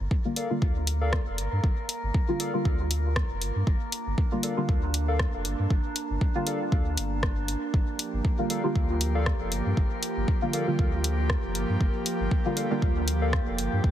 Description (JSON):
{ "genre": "dub techno", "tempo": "118 BPM", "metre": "4/4", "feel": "swing 55% on 16ths", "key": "G minor", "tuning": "A4 = 440 Hz", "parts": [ { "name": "soft dub sub bass", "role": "bass", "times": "0.0-13.9 s", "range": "F1 to G2", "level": "-28 LUFS", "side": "equal", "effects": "sidechain pumping" }, { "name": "drifting glass-harmonics texture", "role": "texture", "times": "0.0-13.9 s", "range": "Bb3 to Bb4", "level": "-36 LUFS", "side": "right 1 dB", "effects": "chorus, built-in reverb, sidechain pumping" }, { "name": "electronic kick drum", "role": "drums", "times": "0.1-13.9 s", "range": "none", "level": "-26 LUFS", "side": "equal", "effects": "none" }, { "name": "deep mellow chord stab", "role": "stabs", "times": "0.2-13.0 s", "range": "D3 to F4", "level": "-31 LUFS", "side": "equal", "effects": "chorus, phaser, sidechain pumping, dub echo" }, { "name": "warbly lo-fi synth keys", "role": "riff", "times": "0.4-13.4 s", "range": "A4 to F5", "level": "-37 LUFS", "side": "left 3 dB", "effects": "chorus, sidechain pumping, dub echo" }, { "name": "deep house drum kit", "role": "drums", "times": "0.4-13.7 s", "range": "hi-hat, rim click", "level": "-33 LUFS", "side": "left 1 dB", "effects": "none" }, { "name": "airy breathy pad", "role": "sustained chords", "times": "7.7-13.9 s", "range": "F3 to G4", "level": "-33 LUFS", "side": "right 1 dB", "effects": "chorus, sidechain pumping" } ], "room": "little or no reverb", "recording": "heavily compressed radio sound, multiband compression", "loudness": "-24 LUFS", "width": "side -11 dB against mid", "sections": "0.0-13.9 A section", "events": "none", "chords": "0.0 Gm7" }